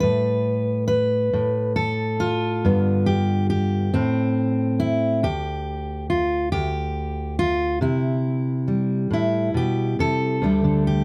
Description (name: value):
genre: folk, solo fingerstyle acoustic guitar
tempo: 46 BPM (dotted quarters)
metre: 6/8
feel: straight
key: unclear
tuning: A4 = 440 Hz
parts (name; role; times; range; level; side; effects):
- fingerpicked steel-string acoustic guitar; solo; 0.0-11.0 s; D2 to B4; -22 LUFS; equal; none
room: light reverb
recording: close, detailed microphones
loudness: -22 LUFS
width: mono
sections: 0.0-10.4 A section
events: none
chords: 0.0 N.C.; 2.6 G; 3.9 N.C.; 7.8 C; 10.4 D5